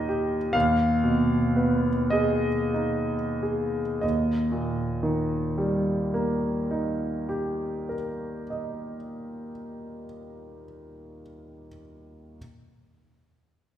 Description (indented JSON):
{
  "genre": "classical, romantic nocturne for solo piano",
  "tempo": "28-44 BPM (dotted quarters)",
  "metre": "12/8",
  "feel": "rubato",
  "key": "Eb major",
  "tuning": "A4 = 442 Hz",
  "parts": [
    { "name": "clear concert grand piano", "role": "solo", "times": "0.0-12.4 s", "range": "Eb2 to F5", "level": "-25 LUFS", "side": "equal", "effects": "none" }
  ],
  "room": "wet recital hall reverb, RT60 1.7 s",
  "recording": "heard from further back in the room",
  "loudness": "-24 LUFS",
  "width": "side -10 dB against mid",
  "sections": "0.0-4.0 A section; 4.0-10.2 B section",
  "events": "slowing down 0.0-4.0",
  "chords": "0.0 Eb; 0.5 Abm/Eb; 4.0 Eb"
}